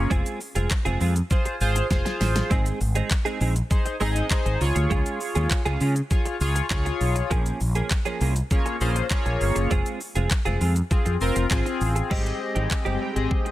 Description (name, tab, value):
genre	dance-pop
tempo	100 BPM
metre	4/4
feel	straight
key	Ab major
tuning	A4 = 440 Hz
part	chorused polysynth	accompaniment	0.0-13.5 s	Bb3 to Eb5	-27 LUFS	left 1 dB	sidechain pumping
part	mellow fretless electric bass	bass	0.0-13.3 s	F1 to Db3	-24 LUFS	equal	sidechain pumping
part	direct-recorded clean electric guitar	riff	0.1-13.5 s	F3 to Ab4	-30 LUFS	right 3 dB	analog chorus
part	pop drum kit	drums	0.1-13.5 s	crash cymbal, handclaps, hi-hat, kick drum, shaker, snare drum	-25 LUFS	equal	none
part	supersaw pad	sustained chords	12.1-13.5 s	Ab3 to G5	-34 LUFS	equal	sidechain pumping
room	little or no reverb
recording	none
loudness	-21 LUFS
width	side -15 dB against mid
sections	0.0-12.1 A section; 12.1-13.5 B section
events	drop 0.0-12.1; drum fill 1.9-2.5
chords	0.1 Fm; 2.5 Ab; 4.6 Db; 7.3 Bbm7; 9.7 Fm; 12.1 Abmaj7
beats	| 0.11 0.71 1.31 1.91 | 2.51 3.11 3.71 4.31 | 4.91 5.51 6.11 6.71 | 7.31 7.91 8.51 9.11 | 9.71 10.31 10.91 11.51 | 12.11 12.71 13.31